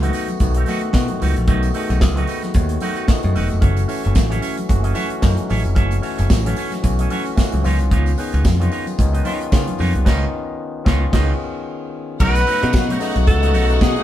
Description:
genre	disco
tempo	112 BPM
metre	4/4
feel	swing 56% on 16ths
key	unclear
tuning	A4 = 440 Hz
part	barky tine electric piano	accompaniment	0.0-14.0 s	C#3 to F#5	-25 LUFS	left 3 dB	none
part	electric guitar with an envelope filter	accompaniment	0.0-14.0 s	A3 to D#5	-28 LUFS	right 4 dB	none
part	modern bright picked electric bass	bass	0.0-13.9 s	E1 to C#3	-18 LUFS	equal	none
part	modern studio drum kit	drums	0.0-14.0 s	crash cymbal, hi-hat, kick drum, snare drum	-20 LUFS	equal	none
part	congas	percussion	0.0-13.9 s	none	-30 LUFS	left 1 dB	none
part	tambourine	percussion	0.1-13.9 s	none	-40 LUFS	right 4 dB	none
part	breathy alto saxophone	melody	12.2-14.0 s	G#4 to B4	-20 LUFS	equal	none
part	warm studio violin section	second line	12.2-14.0 s	F#4 to F#5	-25 LUFS	equal	none
room	light reverb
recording	band playing live in one room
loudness	-16 LUFS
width	side -12 dB against mid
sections	0.0-12.2 A section; 12.2-14.0 B section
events	tine electric piano fill 2.0-3.6; band accent 10.1-12.2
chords	0.0 B7; 3.6 F#m7; 7.6 C#9; 12.2 B9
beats	0.41 0.95 | 1.48 2.02 2.55 3.09 | 3.62 4.16 4.69 5.23 | 5.76 6.30 6.84 7.37 | 7.91 8.44 8.98 9.52 | 10.05 10.59 11.12 11.66 | 12.20 12.73 13.27 13.81

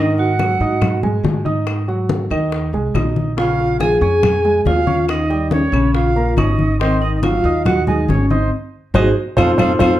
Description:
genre	Afro-Cuban jazz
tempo	140 BPM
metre	4/4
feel	straight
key	Ab mixolydian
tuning	A4 = 440 Hz
part	vibraphone with medium mallets	melody	0.0-10.0 s	C4 to Ab4	-18 LUFS	left 1 dB	none
part	bright reedy jazz flute	second line	0.0-9.9 s	C5 to Ab5	-23 LUFS	right 4 dB	none
part	warm grand piano	accompaniment	0.0-9.9 s	Db3 to Eb6	-21 LUFS	right 2 dB	none
part	upright bass	bass	0.0-10.0 s	Ab1 to Ab2	-20 LUFS	equal	none
part	bongos	percussion	0.2-9.9 s	none	-28 LUFS	left 6 dB	none
part	congas	percussion	0.2-9.9 s	none	-21 LUFS	left 2 dB	none
part	claves	percussion	0.4-9.9 s	none	-31 LUFS	left 6 dB	none
room	moderate large studio reverb, RT60 0.8 s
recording	dark, warm production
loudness	-14 LUFS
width	side -13 dB against mid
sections	0.0-10.0 A section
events	band accent 8.5-10.0; drum fill 9.8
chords	0.0 Ab7sus2; 3.4 Bbm7; 5.1 Eb9; 6.8 Ab6; 9.4 F7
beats	0.39 0.82 1.24 | 1.67 2.10 2.52 2.95 | 3.38 3.81 4.23 4.66 | 5.09 5.52 5.95 6.37 | 6.80 7.23 7.66 8.09 | 8.52 8.95 9.38 9.80

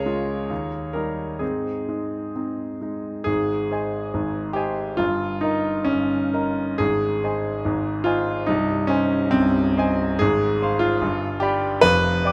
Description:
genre	classical, romantic character piece for solo piano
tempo	63-74 BPM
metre	2/4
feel	rubato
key	Ab major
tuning	A4 = 440 Hz
part	clear concert grand piano	solo	0.0-12.3 s	C1 to D6	-23 LUFS	equal	none
room	moderate recital hall reverb, RT60 1.8 s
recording	close, detailed microphones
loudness	-23 LUFS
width	mono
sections	0.0-3.3 A section; 3.3-12.3 B section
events	none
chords	0.0 Bbm7/Db; 0.5 Eb7; 1.4 Ab; 5.0 Eb7/G; 6.8 Ab; 8.5 Ab/C; 10.2 Fm/Ab; 11.0 G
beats	0.50 | 1.41 2.35 | 3.27 4.15 | 5.00 5.88 | 6.80 7.65 | 8.47 9.31 | 10.19 11.02 | 11.83

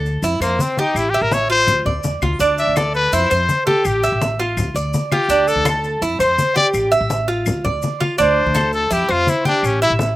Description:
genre	latin, Cuban son and guajira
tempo	166 BPM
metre	4/4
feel	straight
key	D minor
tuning	A4 = 440 Hz
part	Cuban tres	arpeggios	0.0-10.2 s	D4 to E5	-19 LUFS	right 2 dB	slapback echo
part	upright bass	bass	0.0-10.2 s	A1 to F2	-23 LUFS	equal	none
part	congas	percussion	0.0-10.2 s	none	-24 LUFS	left 2 dB	none
part	maracas	percussion	0.1-10.2 s	none	-34 LUFS	left 5 dB	none
part	bright trumpet	melody	0.4-9.9 s	Bb3 to E5	-18 LUFS	left 2 dB	none
part	claves	percussion	0.4-9.8 s	none	-28 LUFS	left 6 dB	none
room	little or no reverb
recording	recorded outdoors, with no room sound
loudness	-15 LUFS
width	side -16 dB against mid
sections	0.0-10.2 A section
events	trumpet solo 0.0-10.2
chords	0.2 F5; 1.0 A5; 1.7 Dm; 3.1 F5; 3.9 A5; 4.6 Dm; 6.0 F5; 6.7 A5; 7.5 Dm7; 8.9 F5; 9.6 A5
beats	0.23 0.59 | 0.96 1.32 1.68 2.04 | 2.40 2.77 3.13 3.49 | 3.85 4.21 4.58 4.94 | 5.30 5.66 6.02 6.38 | 6.75 7.11 7.47 7.83 | 8.19 8.55 8.91 9.28 | 9.64 10.00

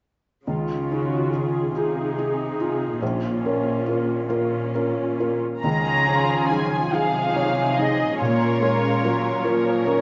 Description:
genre	cinematic, emotional film score for orchestra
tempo	47 BPM (dotted quarters)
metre	6/8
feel	rubato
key	unclear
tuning	A4 = 441 Hz
part	felt-muted upright piano	accompaniment	0.5-10.0 s	Bb1 to Db5	-27 LUFS	equal	none
part	muted studio viola section	accompaniment	0.5-10.0 s	Eb3 to Ab4	-30 LUFS	equal	none
part	concert harp	arpeggios	0.5-10.0 s	Bb2 to Db5	-33 LUFS	equal	none
part	muted symphonic cello section	bass	0.5-10.0 s	Bb2 to Db3	-30 LUFS	equal	none
part	muted studio violin section	melody	5.6-10.0 s	Db5 to Bb5	-27 LUFS	equal	none
part	muted studio violin section	second line	5.6-10.0 s	F4 to Db5	-28 LUFS	equal	none
room	moderate scoring stage reverb, RT60 1.5 s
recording	nothing above 7.7 kHz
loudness	-22 LUFS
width	mono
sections	0.5-5.6 A section; 5.6-10.0 B section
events	none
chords	0.5 Dbadd9; 3.0 Bbm; 5.6 Dbadd9; 8.2 Bbm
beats	| 0.48 1.75 | 3.01 4.29 | 5.63 6.92 | 8.20 9.45

